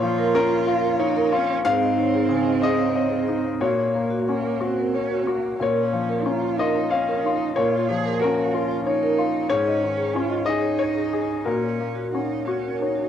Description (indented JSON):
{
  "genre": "neoclassical piano and strings",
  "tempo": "92 BPM",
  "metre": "3/4",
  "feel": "rubato",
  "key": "Bb minor",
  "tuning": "A4 = 439 Hz",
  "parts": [
    { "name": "warm cello", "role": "second line", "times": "0.0-13.1 s", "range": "Bb3 to Ab4", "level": "-26 LUFS", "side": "right 10 dB", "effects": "none" },
    { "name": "clear concert grand piano", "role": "accompaniment", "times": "0.0-13.1 s", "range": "Ab2 to F5", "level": "-22 LUFS", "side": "left 4 dB", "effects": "none" },
    { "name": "vibraphone with hard mallets", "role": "arpeggios", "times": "0.0-13.1 s", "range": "Gb4 to Bb5", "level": "-28 LUFS", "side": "right 2 dB", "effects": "analog delay" }
  ],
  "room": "moderate spring reverb, RT60 2.6 s",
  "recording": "home recording on cassette",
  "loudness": "-20 LUFS",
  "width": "side -9 dB against mid",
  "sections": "0.0-13.1 A section",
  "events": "none",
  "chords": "0.0 Bbm; 1.6 Absus4; 3.6 Gb/Bb; 5.6 Bbm; 9.5 Absus4; 11.5 Gb/Bb"
}